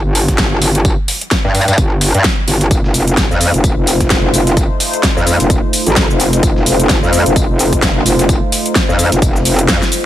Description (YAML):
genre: bass house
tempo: 129 BPM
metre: 4/4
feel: swing 57% on 16ths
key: unclear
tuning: A4 = 436 Hz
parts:
  - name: metallic wobble bass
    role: bass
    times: 0.0-9.8 s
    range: F1 to G2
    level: -13 LUFS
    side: equal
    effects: chorus, overdrive, sidechain pumping
  - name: big-room dance drum kit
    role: drums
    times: 0.1-10.0 s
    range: hi-hat, shaker, snare drum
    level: -16 LUFS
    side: equal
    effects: overdrive
  - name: dusty soul sampler-style drum kit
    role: drums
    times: 0.1-10.0 s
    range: hi-hat, snare drum, tambourine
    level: -25 LUFS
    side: left 2 dB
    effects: sidechain pumping on perc, high-pass filter on perc, high-pass filter on snare, sidechain pumping on hats, high-pass filter on hats, high-pass filter on room
  - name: electronic kick drum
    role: drums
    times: 0.3-9.8 s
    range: none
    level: -16 LUFS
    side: equal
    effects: overdrive
  - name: sweeping resonant pad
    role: sustained chords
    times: 2.7-10.1 s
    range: A3 to C5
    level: -18 LUFS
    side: left 1 dB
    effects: chorus, sidechain pumping
room: digital ambience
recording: none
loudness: -10 LUFS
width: side -12 dB against mid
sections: 0.0-10.1 A section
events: drum fill 9.8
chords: 0.0 N.C.; 2.7 F7